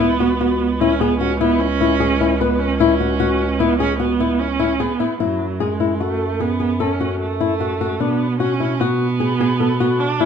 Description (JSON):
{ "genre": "contemporary instrumental, chamber music in an uneven meter", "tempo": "150 BPM", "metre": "7/4", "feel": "straight", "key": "F# minor", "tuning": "A4 = 440 Hz", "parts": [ { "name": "rich viola", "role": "second line", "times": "0.0-10.3 s", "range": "F#3 to D4", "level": "-20 LUFS", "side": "right 7 dB", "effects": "none" }, { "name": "flamenco guitar", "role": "arpeggios", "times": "0.0-10.3 s", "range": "D4 to B4", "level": "-20 LUFS", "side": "left 8 dB", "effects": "none" }, { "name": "mellow bass clarinet", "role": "bass", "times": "0.0-10.3 s", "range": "C#2 to B2", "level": "-23 LUFS", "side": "right 1 dB", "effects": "none" } ], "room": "moderate recital hall reverb, RT60 1.4 s", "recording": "minimal, uncompressed stereo recording", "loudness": "-16 LUFS", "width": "side -7 dB against mid", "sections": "0.0-5.2 A section; 5.2-10.3 B section", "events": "none", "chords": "0.0 C#7sus4; 5.2 F#m9; 8.0 B5" }